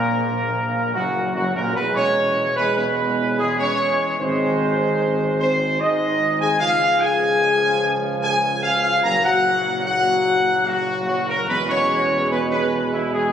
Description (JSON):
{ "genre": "classical, ceremonial fanfare", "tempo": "74 BPM", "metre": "3/4", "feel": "straight", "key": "unclear", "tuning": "A4 = 440 Hz", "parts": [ { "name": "dark trumpet section", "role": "melody", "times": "0.0-13.3 s", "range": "E4 to Bb5", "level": "-19 LUFS", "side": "equal", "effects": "none" }, { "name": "clear trombone section", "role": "sustained chords", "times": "0.0-13.3 s", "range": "Gb2 to Ab3", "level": "-26 LUFS", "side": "right 2 dB", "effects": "none" }, { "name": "dark French horn section", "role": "sustained chords", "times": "0.0-13.3 s", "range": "E3 to Bb4", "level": "-26 LUFS", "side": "left 3 dB", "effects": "none" }, { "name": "mellow tuba", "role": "bass", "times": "0.0-13.3 s", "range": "E1 to E2", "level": "-29 LUFS", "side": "right 2 dB", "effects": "none" } ], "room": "wet church reverb, RT60 3.7 s", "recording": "recorded on a phone in the room, club reverb", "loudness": "-17 LUFS", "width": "side -8 dB against mid", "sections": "0.0-13.3 A section", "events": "none", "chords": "0.0 Gb/Bb; 1.8 E; 4.2 Ab; 6.6 Db; 9.0 Gb; 11.5 E" }